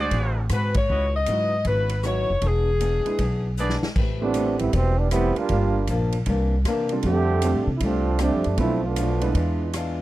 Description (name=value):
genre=jazz, big band swing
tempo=156 BPM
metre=4/4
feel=swing 65% on 8ths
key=A minor from 4.0 s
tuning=A4 = 440 Hz
part: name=warm concert grand piano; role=accompaniment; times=0.0-9.7 s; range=F#3 to C5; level=-28 LUFS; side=right 4 dB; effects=none
part: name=clear trumpet section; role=stabs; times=0.0-1.1, 3.6-3.8 s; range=E4 to D#5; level=-28 LUFS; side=right 3 dB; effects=none
part: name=upright bass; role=bass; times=0.0-10.0 s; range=E1 to C3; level=-24 LUFS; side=equal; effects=none
part: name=picked acoustic archtop guitar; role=accompaniment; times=0.1-10.0 s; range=G2 to B4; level=-30 LUFS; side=left 4 dB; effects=none
part: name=swinging big-band drum kit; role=drums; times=0.1-9.8 s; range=crash cymbal, hi-hat, kick drum, ride cymbal, rim click, snare drum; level=-30 LUFS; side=equal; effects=none
part: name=warm saxophone section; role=melody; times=0.5-3.6 s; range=G#4 to D#5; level=-24 LUFS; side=left 3 dB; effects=none
part: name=warm trombone section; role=second line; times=4.2-9.4 s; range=B2 to G4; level=-24 LUFS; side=right 4 dB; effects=none
room=little or no reverb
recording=dry, close 1970s-style studio recording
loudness=-20 LUFS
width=side -16 dB against mid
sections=0.0-4.0 A section; 4.0-10.0 B section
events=band accent 0.7; drum fill 3.6-4.0; trombone section solo 4.0-10.0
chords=0.0 D7#11; 0.9 C#m11; 2.4 E7; 4.0 Am9; 5.5 Gm7; 6.3 C9; 7.0 F69; 8.6 Bm7b5; 9.3 E7b9